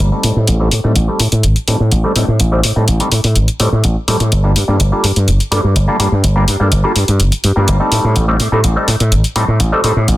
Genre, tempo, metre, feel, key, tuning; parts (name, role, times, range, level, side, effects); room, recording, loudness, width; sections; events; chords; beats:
filtered disco house; 125 BPM; 4/4; straight; A4 = 438 Hz
clav; accompaniment; 0.0-9.9 s; G3 to C5; -18 LUFS; equal; phaser, low-pass filter
glassy slap bass; bass; 0.0-10.2 s; G1 to A2; -12 LUFS; equal; tube saturation, low-pass filter
electronic hi-hat; drums; 0.2-10.2 s; -18 LUFS; left 1 dB
light reverb; dense, heavily limited modern master; -11 LUFS; side -16 dB against mid
0.0-10.2 A section
filter sweep 0.0-10.2
0.2 Am7b5; 4.3 Gm7; 7.9 Am7b5
0.00 | 0.48 0.96 1.44 1.92 | 2.40 2.88 3.36 3.84 | 4.32 4.80 5.28 5.76 | 6.24 6.72 7.20 7.68 | 8.16 8.64 9.12 9.60 | 10.08